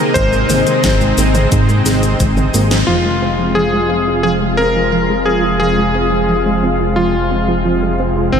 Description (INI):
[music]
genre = synthwave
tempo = 88 BPM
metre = 4/4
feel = straight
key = F minor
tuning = A4 = 440 Hz
[part]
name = clear electric grand piano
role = melody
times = 0.0-8.4 s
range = C4 to C5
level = -17 LUFS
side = left 1 dB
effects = ping-pong delay
[part]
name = analog string pad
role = sustained chords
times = 0.0-8.4 s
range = C3 to F4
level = -16 LUFS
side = left 1 dB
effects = ensemble chorus
[part]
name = soft round pluck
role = arpeggios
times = 0.0-8.4 s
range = Eb3 to F4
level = -21 LUFS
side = right 3 dB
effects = chorus, cassette tape, analog delay
[part]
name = chorused synth bass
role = bass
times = 0.2-8.4 s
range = F1 to Ab2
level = -18 LUFS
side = equal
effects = none
[part]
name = electronic kick drum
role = drums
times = 0.2-2.3 s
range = none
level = -18 LUFS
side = equal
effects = studio ambience
[part]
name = pop drum kit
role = drums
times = 0.2-2.8 s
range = cabasa, hi-hat, snare drum, toms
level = -22 LUFS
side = left 1 dB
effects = low-pass filter on hats, studio ambience, low-pass filter on perc, low-pass filter on toms, low-pass filter on snare
[sound]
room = wet cathedral reverb, RT60 5.3 s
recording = dreamy mix soaked in reverb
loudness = -12 LUFS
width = side -7 dB against mid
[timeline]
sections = 0.0-2.9 A section; 2.9-8.4 B section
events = drum fill 1.9-2.9; band accent 2.7-3.1; filter sweep on synth arpeggio sound 2.9-8.4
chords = 0.0 Abadd9; 2.9 Fm